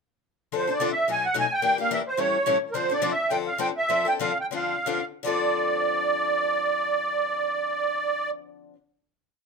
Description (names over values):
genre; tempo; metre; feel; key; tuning
jazz; 154-218 BPM; 4/4; swing 56% on 8ths; D minor; A4 = 440 Hz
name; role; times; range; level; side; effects
picked steel-string acoustic guitar; accompaniment; 0.5-8.8 s; A2 to A4; -30 LUFS; left 10 dB; none
musette accordion; melody; 0.6-8.3 s; Bb4 to G#5; -24 LUFS; right 3 dB; none
room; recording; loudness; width
moderate club reverb, RT60 0.7 s; minimal, uncompressed stereo recording; -23 LUFS; side -4 dB against mid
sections
0.5-5.2 A section; 5.2-8.3 final chord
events
slowing down 2.7-5.2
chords
0.5 Dm7; 1.1 B7; 1.6 Em7b5; 2.2 A7; 2.7 Dm7